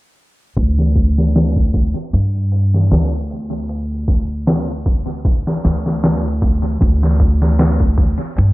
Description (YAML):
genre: trip hop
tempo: 77 BPM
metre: 4/4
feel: swing 55% on 16ths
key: unclear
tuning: A4 = 441 Hz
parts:
  - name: upright bass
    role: bass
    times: 0.6-8.5 s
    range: D2 to G2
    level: -16 LUFS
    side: equal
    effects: tube saturation
  - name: trip hop sampler-style drum kit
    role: drums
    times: 0.6-8.5 s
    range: hi-hat, kick drum, snare drum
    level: -16 LUFS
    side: equal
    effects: overdrive, low-pass filter on hats, low-pass filter on kick, low-pass filter on snare, low-pass filter on room, analog delay
room: little or no reverb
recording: echo-heavy mix, low-pass filter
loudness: -14 LUFS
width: side -19 dB against mid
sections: 0.6-8.5 A section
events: filter sweep 0.6-8.5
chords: none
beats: | 0.58 1.35 2.13 2.91 | 3.69 4.47 5.25 6.03 | 6.81 7.59 8.37